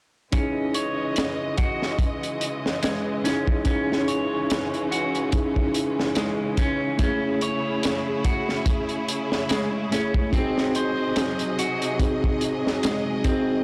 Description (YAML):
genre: trip hop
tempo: 72 BPM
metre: 4/4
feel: swing 56% on 16ths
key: C# harmonic minor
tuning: A4 = 442 Hz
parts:
  - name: mellow tine electric piano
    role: accompaniment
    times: 0.3-13.6 s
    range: A3 to G#4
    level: -30 LUFS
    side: equal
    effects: harmonic tremolo, low-pass filter, tape echo
  - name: bright studio string section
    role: sustained chords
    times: 0.3-13.6 s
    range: B#2 to D#5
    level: -32 LUFS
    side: equal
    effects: low-pass filter
  - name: electric guitar at the edge of break-up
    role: arpeggios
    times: 0.3-13.6 s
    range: G#3 to C#5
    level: -31 LUFS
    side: equal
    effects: vintage 12-bit sampler grit, low-pass filter, tape echo
  - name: crunchy breakbeat drum kit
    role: drums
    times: 0.3-13.5 s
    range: hi-hat, kick drum, snare drum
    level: -28 LUFS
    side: equal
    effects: soft clipping on snare
room: light reverb, small room ambience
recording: blown-out, overdriven recording, overdrive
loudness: -24 LUFS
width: mono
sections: 0.3-13.6 A section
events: filter sweep on tine electric piano 0.3-13.6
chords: 0.3 C#madd9; 7.0 Amaj7; 10.3 G#7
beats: | 0.33 1.17 2.00 2.83 | 3.67 4.50 5.33 6.17 | 7.00 7.83 8.66 9.50 | 10.33 11.16 12.00 12.83